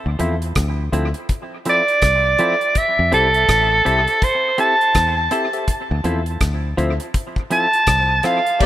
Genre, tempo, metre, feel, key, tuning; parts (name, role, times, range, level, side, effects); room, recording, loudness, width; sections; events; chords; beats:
lovers rock reggae; 82 BPM; 4/4; swing 61% on 16ths; A4 = 439 Hz
fingered electric bass; bass; 0.1-8.2 s; A1 to F2; -21 LUFS; left 1 dB
barky tine electric piano; accompaniment; 0.2-8.4 s; F4 to E5; -28 LUFS; left 4 dB
semi-hollow electric guitar; stabs; 0.2-8.4 s; F3 to A4; -27 LUFS; right 2 dB; dub echo
damped 70s drum kit; drums; 0.2-8.7 s; crash cymbal, hi-hat, kick drum, rim click; -23 LUFS; equal; dub echo
warm soprano saxophone; melody; 1.7-8.7 s; A4 to A5; -16 LUFS; right 1 dB; tape echo
warm studio violin section; second line; 8.6-8.7 s; Bb3 to D5; -16 LUFS; left 4 dB
light reverb, small room ambience; rough home demo mix; -15 LUFS; side -13 dB against mid
0.0-8.6 A section
0.0 Dm9; 2.8 Fmaj7 (rootless); 5.7 Dm9
0.56 1.29 2.02 | 2.76 3.49 4.22 4.95 | 5.68 6.41 7.14 7.88 | 8.61